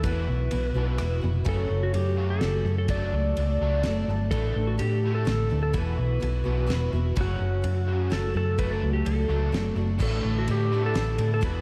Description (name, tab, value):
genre	folk rock and heartland rock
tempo	126 BPM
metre	3/4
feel	straight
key	A mixolydian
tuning	A4 = 439 Hz
part	clean lap steel guitar	melody	0.0-11.6 s	F#4 to D5	-33 LUFS	equal	delay
part	picked twelve-string acoustic guitar	accompaniment	0.0-11.6 s	F#2 to A4	-37 LUFS	equal	none
part	crunchy overdriven guitar	riff	0.0-11.6 s	E2 to D4	-36 LUFS	equal	ensemble chorus
part	hollow-body short-scale fingered electric bass	bass	0.0-11.6 s	E1 to A2	-28 LUFS	equal	none
part	damped 70s drum kit	drums	0.0-11.5 s	crash cymbal, kick drum, ride cymbal, rim click, snare drum	-35 LUFS	equal	none
room	moderate lush hall reverb, RT60 1.9 s, studio reverb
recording	dreamy mix soaked in reverb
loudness	-26 LUFS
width	mono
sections	0.0-10.0 A section; 10.0-11.6 A section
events	none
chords	0.0 Esus2; 1.5 F#m; 2.9 D/F#; 4.3 Asus4; 5.7 Esus2; 7.2 F#m; 8.6 D/F#; 10.0 Asus4